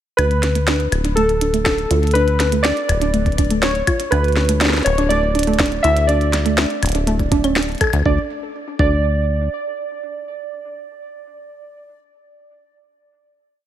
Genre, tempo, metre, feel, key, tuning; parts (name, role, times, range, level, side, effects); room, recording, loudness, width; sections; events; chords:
IDM; 122 BPM; 4/4; straight; A4 = 439 Hz
warbly lo-fi synth keys; melody; 0.2-11.8 s; A4 to E5; -21 LUFS; right 1 dB; chorus, ping-pong delay
warbly dusty pluck; arpeggios; 0.2-8.9 s; A3 to A4; -23 LUFS; right 2 dB; chorus, cassette tape, ping-pong delay
deep acid bass; bass; 0.2-9.5 s; D1 to D2; -19 LUFS; left 1 dB; tube saturation
glitchy drum kit; drums; 0.2-8.1 s; claves, hi-hat, snare drum; -22 LUFS; left 1 dB; studio reverb
electronic kick drum; drums; 1.7-8.9 s; -20 LUFS; left 1 dB; studio reverb
light reverb, digital ambience; -15 LUFS; side -11 dB against mid
0.2-8.1 groove; 8.1-12.0 final note
0.2 D5; 4.1 Asus2/D (rootless); 6.1 D5; 8.1 N.C.